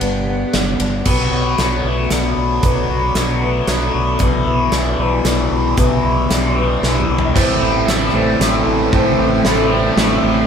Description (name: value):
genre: post-rock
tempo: 114 BPM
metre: 3/4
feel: straight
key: unclear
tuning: A4 = 440 Hz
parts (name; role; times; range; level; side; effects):
- shimmering ambient pad; sustained chords; 0.0-10.5 s; B3 to D6; -29 LUFS; right 2 dB; none
- electric guitar through a small old amp; arpeggios; 0.0-10.5 s; A2 to G4; -25 LUFS; left 1 dB; none
- felt-muted upright piano; arpeggios; 0.0-10.5 s; B4 to E5; -26 LUFS; left 2 dB; none
- growling fingered electric bass; bass; 0.0-10.5 s; G1 to B1; -20 LUFS; equal; overdrive
- big rock drum kit; drums; 0.0-10.1 s; crash cymbal, hi-hat, kick drum, ride cymbal, snare drum, toms; -20 LUFS; right 1 dB; none
- overdriven electric guitar; riff; 1.1-10.5 s; E2 to B3; -18 LUFS; left 4 dB; phaser
- crunchy overdriven guitar; riff; 7.4-10.5 s; A2 to E4; -17 LUFS; right 5 dB; none
room: wet studio reverb, RT60 0.8 s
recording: band playing live in one room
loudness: -13 LUFS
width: side -7 dB against mid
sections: 0.0-1.1 A section; 1.1-10.5 B section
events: build-up 1.1-10.5; drum fill 6.8-7.4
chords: 0.0 Gmaj7; 1.1 Bm7; 4.2 Em7/B; 7.4 Am7